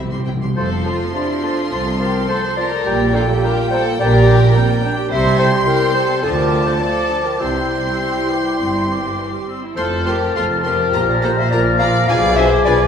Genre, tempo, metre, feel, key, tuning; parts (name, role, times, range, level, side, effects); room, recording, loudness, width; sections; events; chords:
quick classical-period movement for symphony orchestra; 104 BPM; 4/4; uneven beats, rubato; F major; A4 = 439 Hz
rich chamber violin section; melody; 0.0-12.7 s; G5 to C6; -27 LUFS; left 1 dB
rich chamber violin section; second line; 0.0-12.9 s; E4 to D5; -26 LUFS; left 2 dB
rich chamber viola section; accompaniment; 0.0-12.7 s; D3 to A4; -26 LUFS; right 2 dB
clear chamber double bass section; bass; 0.0-12.9 s; F1 to D2; -22 LUFS; right 2 dB
warm chamber cello section; bass; 0.0-12.9 s; C2 to C4; -22 LUFS; right 2 dB
timpani; percussion; 0.0-0.5 s; C3; -22 LUFS; equal
dark clarinet; second line; 0.6-12.8 s; G4 to F5; -22 LUFS; left 2 dB
mellow flute section; second line; 0.6-12.9 s; Bb5 to F6; -25 LUFS; left 2 dB
warm oboe; second line; 0.6-12.9 s; G5 to Bb5; -26 LUFS; equal
warm bassoon; accompaniment; 0.6-12.9 s; F3 to G3; -26 LUFS; equal
mellow French horn section; sustained chords; 0.6-12.9 s; C4 to A4; -22 LUFS; left 2 dB
wet recital hall reverb, RT60 1.5 s; recorded in a church or concert hall; -14 LUFS; side -7 dB against mid
0.6-12.9 A section
timpani fill 0.0-0.6
0.0 C; 0.6 F; 2.9 Gm/Bb; 5.1 C; 6.2 Dm; 7.4 C; 9.8 F; 10.9 Bb5; 12.1 Bdim7